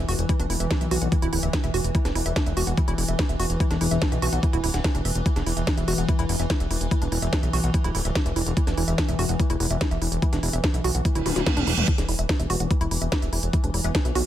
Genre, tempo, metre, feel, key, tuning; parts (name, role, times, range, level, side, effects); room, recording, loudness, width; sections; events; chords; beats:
psychedelic trance; 145 BPM; 4/4; straight; A4 = 439 Hz
evolving wavetable pad; sustained chords; 0.0-14.3 s; E3; -30 LUFS; left 2 dB; chorus, built-in reverb, sidechain pumping
woody wave-folded pluck; riff; 0.0-14.2 s; D4 to F#5; -31 LUFS; moving between left 5 dB and right 6 dB; chorus, auto-pan, sidechain pumping, tape echo
fat analog bass; bass; 0.0-14.2 s; D1 to B1; -26 LUFS; equal
techno drum kit; drums; 0.1-14.2 s; hi-hat, snare drum, toms; -29 LUFS; equal
electronic kick drum; drums; 0.3-14.0 s; -23 LUFS; equal; overdrive
reverse cymbal; sound effects; 11.2-11.9 s; -28 LUFS; right 7 dB
resonant blip pluck; second line; 13.8-14.0 s; B3; -38 LUFS; equal; phaser, ensemble chorus, sidechain pumping, high-pass filter, tape echo
little or no reverb; -21 LUFS; side -12 dB against mid
0.0-14.3 A section
reverse cymbal 11.2-11.9; drum fill 11.3-11.9
0.0 E5
| 0.29 0.71 1.12 1.53 | 1.95 2.36 2.77 3.19 | 3.60 4.02 4.43 4.84 | 5.26 5.67 6.08 6.50 | 6.91 7.33 7.74 8.15 | 8.57 8.98 9.40 9.81 | 10.22 10.64 11.05 11.46 | 11.88 12.29 12.71 13.12 | 13.53 13.95